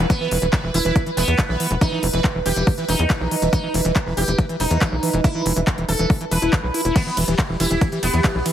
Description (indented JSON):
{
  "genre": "psychedelic trance",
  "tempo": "140 BPM",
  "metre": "4/4",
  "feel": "straight",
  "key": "E harmonic minor",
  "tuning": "A4 = 440 Hz",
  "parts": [
    { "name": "pulsing gated texture", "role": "sustained chords", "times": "0.0-8.5 s", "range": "G4 to B4", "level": "-27 LUFS", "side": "right 5 dB", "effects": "chorus, built-in reverb, sidechain pumping" },
    { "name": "screaming distorted acid line", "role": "riff", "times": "0.0-8.5 s", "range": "D#3 to E4", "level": "-24 LUFS", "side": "left 1 dB", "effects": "distortion, chorus, auto-pan, sidechain pumping, dub echo" },
    { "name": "tight sequencer bass", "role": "bass", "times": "0.0-8.4 s", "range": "E1 to E2", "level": "-23 LUFS", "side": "equal", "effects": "none" },
    { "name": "sitar", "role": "melody", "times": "0.1-8.5 s", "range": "B3 to B4", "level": "-25 LUFS", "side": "right 1 dB", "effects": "phaser, sidechain pumping, ping-pong delay" },
    { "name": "electronic kick drum", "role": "drums", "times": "0.1-8.3 s", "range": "none", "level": "-19 LUFS", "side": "equal", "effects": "none" },
    { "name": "techno drum kit", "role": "drums", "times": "0.1-8.5 s", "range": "crash cymbal, handclaps, hi-hat, ride cymbal", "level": "-26 LUFS", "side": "left 1 dB", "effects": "none" }
  ],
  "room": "light reverb, digital ambience",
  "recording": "heavily compressed radio sound, multiband compression",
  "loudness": "-17 LUFS",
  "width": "side -10 dB against mid",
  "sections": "0.0-8.5 A section",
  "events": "none",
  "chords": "0.0 E5"
}